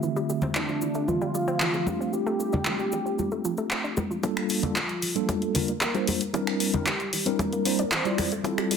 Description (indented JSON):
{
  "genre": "nu-disco, nu disco",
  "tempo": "114 BPM",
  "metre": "4/4",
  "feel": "straight",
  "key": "G dorian",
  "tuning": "A4 = 440 Hz",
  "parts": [
    { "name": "mellow tine electric piano", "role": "accompaniment", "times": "0.0-8.8 s", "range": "D3 to E5", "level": "-28 LUFS", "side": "equal", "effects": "medium stereo tremolo, sidechain pumping" },
    { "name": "analog pluck", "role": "arpeggios", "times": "0.0-8.8 s", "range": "E3 to F4", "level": "-34 LUFS", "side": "right 2 dB", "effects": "chorus, sidechain pumping, ping-pong delay" },
    { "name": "cabasa, congas and bongos", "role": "percussion", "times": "0.0-8.8 s", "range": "none", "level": "-32 LUFS", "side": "left 2 dB", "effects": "none" },
    { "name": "wide unison lead", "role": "melody", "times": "0.6-8.4 s", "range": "D4 to C5", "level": "-31 LUFS", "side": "right 1 dB", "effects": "ping-pong delay" },
    { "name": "house drum kit", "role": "drums", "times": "0.6-8.8 s", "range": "finger snaps, handclaps, hi-hat", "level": "-28 LUFS", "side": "equal", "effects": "studio reverb" },
    { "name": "electronic kick drum", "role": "drums", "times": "4.2-8.6 s", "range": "none", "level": "-33 LUFS", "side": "equal", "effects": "high-pass filter on kick, studio reverb" }
  ],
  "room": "moderate plate reverb, RT60 1.2 s",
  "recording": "dense, heavily limited modern master",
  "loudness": "-24 LUFS",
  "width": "side -6 dB against mid",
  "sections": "0.0-4.2 A section; 4.2-8.8 B section",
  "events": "filter sweep on synth arpeggio sound 0.0-4.2, 4.2-8.8; build-up 4.2-8.8; filter sweep on analog synth lead 4.2-8.8",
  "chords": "0.0 Dm11; 1.9 F69; 4.2 Gm9; 6.3 C9; 8.2 Dm11"
}